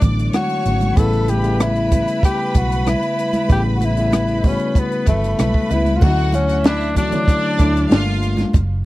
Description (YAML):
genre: lush 1970s-style soul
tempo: 95 BPM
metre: 4/4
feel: straight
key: unclear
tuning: A4 = 442 Hz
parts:
  - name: breathy tenor saxophone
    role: melody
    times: 0.0-8.2 s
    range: A3 to A4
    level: -21 LUFS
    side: left 1 dB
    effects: slapback echo
  - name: clear symphonic string section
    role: second line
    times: 0.0-8.4 s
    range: D4 to D6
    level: -27 LUFS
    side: right 1 dB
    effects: none
  - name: barky tine electric piano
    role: accompaniment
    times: 0.0-8.6 s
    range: C#3 to C#5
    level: -22 LUFS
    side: left 2 dB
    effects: none
  - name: vintage muted fingered electric bass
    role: bass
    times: 0.0-8.8 s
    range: F#1 to D2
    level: -20 LUFS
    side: right 1 dB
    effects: none
  - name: compact cocktail drum kit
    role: drums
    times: 0.0-8.7 s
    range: crash cymbal, hi-hat, kick drum, rim click, snare drum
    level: -16 LUFS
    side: equal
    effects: none
  - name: congas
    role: percussion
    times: 0.0-8.7 s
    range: none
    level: -26 LUFS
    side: right 2 dB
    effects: none
room: small room ambience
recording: dry, close 1970s-style studio recording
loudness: -15 LUFS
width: side -17 dB against mid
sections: 0.0-6.0 A section; 6.0-8.8 B section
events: none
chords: 0.0 Bm9; 1.0 A9; 6.0 Dmaj7; 7.9 Gm7